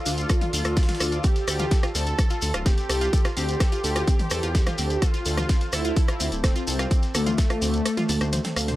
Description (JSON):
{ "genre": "melodic techno", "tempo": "127 BPM", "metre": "4/4", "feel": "straight", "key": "D minor", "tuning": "A4 = 440 Hz", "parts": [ { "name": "wide unison lead", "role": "melody", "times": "0.0-8.7 s", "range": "A3 to A4", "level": "-28 LUFS", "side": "equal", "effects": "lush chorus, sidechain pumping, analog delay" }, { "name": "deep dark ambient pad", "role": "sustained chords", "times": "0.0-8.8 s", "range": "A4 to D6", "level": "-38 LUFS", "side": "right 1 dB", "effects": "chorus, built-in reverb, sidechain pumping" }, { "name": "analog pluck", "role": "arpeggios", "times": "0.1-8.7 s", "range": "C4 to D6", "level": "-33 LUFS", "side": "equal", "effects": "chorus, phaser, sidechain pumping, analog delay" }, { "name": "dark detuned saw bass", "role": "bass", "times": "0.1-8.8 s", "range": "D1 to E2", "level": "-27 LUFS", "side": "equal", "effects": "tube saturation, sidechain pumping" }, { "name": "breakbeat sampler-style drum kit", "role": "drums", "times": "0.1-8.8 s", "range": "hi-hat, snare drum", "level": "-39 LUFS", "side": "right 1 dB", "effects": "none" }, { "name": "punchy analog drum machine", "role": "drums", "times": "0.1-8.8 s", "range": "hi-hat, rim click, toms", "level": "-31 LUFS", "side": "equal", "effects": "none" }, { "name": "shekere", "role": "percussion", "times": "0.1-8.8 s", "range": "none", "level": "-33 LUFS", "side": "left 1 dB", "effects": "none" }, { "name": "electronic kick drum", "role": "drums", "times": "0.3-7.5 s", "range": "none", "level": "-21 LUFS", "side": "equal", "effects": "none" } ], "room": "little or no reverb", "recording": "dry, gritty hardware recording", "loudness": "-21 LUFS", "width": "side -16 dB against mid", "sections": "0.0-8.8 A section", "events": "kick drops out 7.9-8.8; drum fill 8.1-8.8", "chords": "0.0 Dm", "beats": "0.30 0.77 | 1.24 1.71 2.19 2.66 | 3.13 3.60 4.08 4.55 | 5.02 5.49 5.96 6.44 | 6.91 7.38 7.86 8.33" }